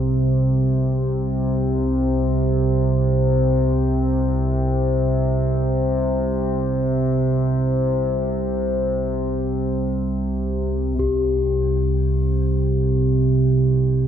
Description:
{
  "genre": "dark ambient drone",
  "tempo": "free time",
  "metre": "none",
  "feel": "none",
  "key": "unclear",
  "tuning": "A4 = 440 Hz",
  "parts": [
    { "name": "analog drone", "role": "drone", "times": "0.0-14.1 s", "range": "C2 to C3", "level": "-18 LUFS", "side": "right 1 dB", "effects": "chorus" },
    { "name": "bronze singing bowl", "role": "texture", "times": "0.0-14.1 s", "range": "G4", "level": "-25 LUFS", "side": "left 6 dB", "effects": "none" },
    { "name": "taiko ensemble", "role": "percussion", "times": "11.0-11.2 s", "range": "none", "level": "-32 LUFS", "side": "right 1 dB", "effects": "none" }
  ],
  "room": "wet echo chamber reverb, RT60 2.6 s",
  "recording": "echo-heavy mix",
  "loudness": "-18 LUFS",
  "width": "side -9 dB against mid",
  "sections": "0.0-11.0 A section; 11.0-14.1 B section",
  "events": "none",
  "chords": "0.0 C5",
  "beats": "free time"
}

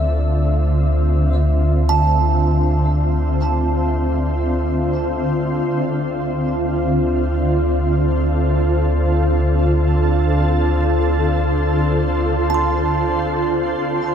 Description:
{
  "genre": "ambient",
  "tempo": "free time",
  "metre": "none",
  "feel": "none",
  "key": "D minor",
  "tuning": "A4 = 437 Hz",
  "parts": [
    { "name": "shimmering ambient pad", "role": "sustained chords", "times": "0.0-14.1 s", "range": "D3 to E5", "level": "-18 LUFS", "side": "equal", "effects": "chorus, built-in reverb" },
    { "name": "kalimba", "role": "arpeggios", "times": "0.0-4.8, 12.5-14.1 s", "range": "D5 to C6", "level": "-25 LUFS", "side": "right 4 dB", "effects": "diffuse ambient delay" },
    { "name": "warm sub bass", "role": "bass", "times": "0.0-14.1 s", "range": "D2", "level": "-19 LUFS", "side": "equal", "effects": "none" }
  ],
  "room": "wet huge ambient reverb, RT60 7.9 s",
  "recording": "none",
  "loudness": "-16 LUFS",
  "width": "side -8 dB against mid",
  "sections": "0.0-14.1 A section",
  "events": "none",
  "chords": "0.0 Dm9",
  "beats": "free time"
}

